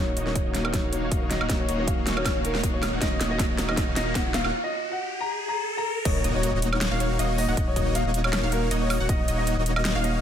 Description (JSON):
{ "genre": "future bass", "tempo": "158 BPM", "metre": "4/4", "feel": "swing 54% on 16ths, half-time", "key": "Eb minor", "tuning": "A4 = 441 Hz", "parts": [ { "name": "clear baby grand piano", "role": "melody", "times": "0.0-10.2 s", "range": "Bb4 to Bb5", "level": "-31 LUFS", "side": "left 2 dB", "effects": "sidechain pumping, low-pass filter, ping-pong delay" }, { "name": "felt-muted upright piano", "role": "accompaniment", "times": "0.0-4.4 s", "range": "Eb3 to Gb4", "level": "-34 LUFS", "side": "right 2 dB", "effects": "sidechain pumping" }, { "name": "bright symphonic string section", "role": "sustained chords", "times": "0.0-4.5 s", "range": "Eb3 to F5", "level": "-40 LUFS", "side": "left 1 dB", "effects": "none" }, { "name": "dense compressed supersaw", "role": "riff", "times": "0.0-10.2 s", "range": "Bb3 to Gb5", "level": "-29 LUFS", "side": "equal", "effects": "cassette tape, sidechain pumping, low-pass filter" }, { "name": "saturated sub bass", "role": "bass", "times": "0.0-10.2 s", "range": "Eb1", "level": "-29 LUFS", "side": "equal", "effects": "sidechain pumping" }, { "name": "riser and impact", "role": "sound effects", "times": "2.3-7.6 s", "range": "none", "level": "-34 LUFS", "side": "equal", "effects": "none" }, { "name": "big-room dance drum kit", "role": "drums", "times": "0.2-10.1 s", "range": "crash cymbal, hi-hat, snare drum, woodblock", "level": "-29 LUFS", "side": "right 1 dB", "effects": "overdrive" }, { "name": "electronic kick drum", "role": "drums", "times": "0.4-9.2 s", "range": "none", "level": "-27 LUFS", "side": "equal", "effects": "overdrive" }, { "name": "wide unison pluck", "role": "arpeggios", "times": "6.1-10.2 s", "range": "Eb5 to Gb5", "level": "-35 LUFS", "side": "right 1 dB", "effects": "cassette tape, sidechain pumping" } ], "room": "light reverb, digital ambience", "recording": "none", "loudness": "-23 LUFS", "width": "side -9 dB against mid", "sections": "0.0-6.1 A section; 6.1-10.2 B section", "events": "build-up 0.0-6.1; drum fill 0.0-4.5; filter sweep on grand piano 0.0-6.1; riser 2.3-6.1; break 4.5-6.1; drop 6.1-10.2; impact 6.1-7.6", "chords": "0.0 Ebm7", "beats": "0.36 0.74 1.12 | 1.50 1.88 2.26 2.64 | 3.02 3.40 3.77 4.16 | 4.53 4.91 5.29 5.67 | 6.05 6.43 6.81 7.19 | 7.57 7.95 8.33 8.71 | 9.09 9.47 9.85" }